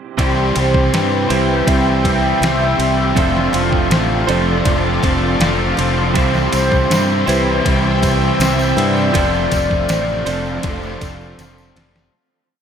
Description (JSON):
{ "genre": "rock, shoegaze and dream pop", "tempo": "80 BPM", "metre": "4/4", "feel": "straight", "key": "C major", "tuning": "A4 = 442 Hz", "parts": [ { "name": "shimmering ambient pad", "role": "sustained chords", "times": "1.4-12.1 s", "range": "A4 to D6", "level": "-25 LUFS", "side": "equal", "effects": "chorus, built-in reverb" }, { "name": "picked twelve-string acoustic guitar", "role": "arpeggios", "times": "0.2-12.1 s", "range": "F3 to E4", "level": "-26 LUFS", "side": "right 2 dB", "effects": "lush chorus, diffuse ambient delay" }, { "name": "biting overdriven guitar", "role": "riff", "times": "0.2-12.1 s", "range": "C3 to G4", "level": "-21 LUFS", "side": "left 6 dB", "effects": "analog chorus" }, { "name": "crunchy overdriven guitar", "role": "riff", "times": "0.2-12.3 s", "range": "F2 to C4", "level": "-22 LUFS", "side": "equal", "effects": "none" }, { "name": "direct-recorded clean electric guitar", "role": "riff", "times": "0.2-12.1 s", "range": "C3 to C5", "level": "-23 LUFS", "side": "right 7 dB", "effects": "reverse reverb" }, { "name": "fingered electric bass", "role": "bass", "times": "0.2-12.1 s", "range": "F1 to G2", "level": "-20 LUFS", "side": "equal", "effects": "none" }, { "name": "detuned 8-bit digital drum machine", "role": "drums", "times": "0.2-12.1 s", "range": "kick drum, ride cymbal, snare drum", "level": "-21 LUFS", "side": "equal", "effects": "none" }, { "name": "mellow horn-like synth lead", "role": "melody", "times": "0.6-11.4 s", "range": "B4 to F5", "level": "-22 LUFS", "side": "left 1 dB", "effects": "chorus, diffuse ambient delay" }, { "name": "tambourine", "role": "percussion", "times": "6.2-12.0 s", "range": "none", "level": "-34 LUFS", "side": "right 2 dB", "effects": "none" } ], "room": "wet cathedral reverb, RT60 6.5 s", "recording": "dreamy mix soaked in reverb", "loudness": "-13 LUFS", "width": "side -8 dB against mid", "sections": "0.2-12.1 verse", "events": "fade-out 9.1-12.1; drum fill 11.4-12.1", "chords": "0.2 Cmaj7; 3.2 F6; 6.1 Cmaj7; 9.1 F6" }